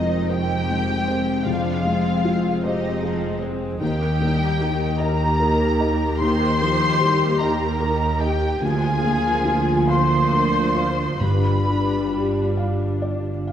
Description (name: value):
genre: cinematic, emotional film score for orchestra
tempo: 44-52 BPM (dotted quarters)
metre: 6/8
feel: rubato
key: unclear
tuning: A4 = 440 Hz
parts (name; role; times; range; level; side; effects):
- muted symphonic violin section; melody; 0.0-12.6 s; Eb5 to C6; -28 LUFS; left 2 dB; none
- mellow hollow flute section; second line; 0.0-12.6 s; Eb5 to C6; -27 LUFS; left 1 dB; none
- muted symphonic violin section; second line; 0.0-12.6 s; Eb4 to C5; -32 LUFS; equal; none
- felt-muted upright piano; accompaniment; 0.0-13.5 s; D2 to F5; -27 LUFS; left 2 dB; none
- muted symphonic viola section; accompaniment; 0.0-13.5 s; Eb3 to G4; -28 LUFS; right 1 dB; none
- mellow French horn section; sustained chords; 0.0-13.5 s; Ab3 to F4; -27 LUFS; left 1 dB; none
- concert harp; arpeggios; 0.0-13.5 s; G2 to F5; -28 LUFS; left 4 dB; none
- muted symphonic cello section; bass; 0.0-13.5 s; D2 to G2; -28 LUFS; right 3 dB; none
- muted symphonic double bass section; bass; 0.0-13.5 s; F1 to Eb2; -27 LUFS; right 4 dB; none
- timpani; percussion; 11.2-12.5 s; G2; -30 LUFS; right 2 dB; none
room: moderate scoring stage reverb, RT60 1.8 s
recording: none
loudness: -18 LUFS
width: side -9 dB against mid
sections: 0.0-13.5 A section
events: none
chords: 0.0 Fm7; 3.8 Eb; 8.6 Bb7/D; 11.2 G7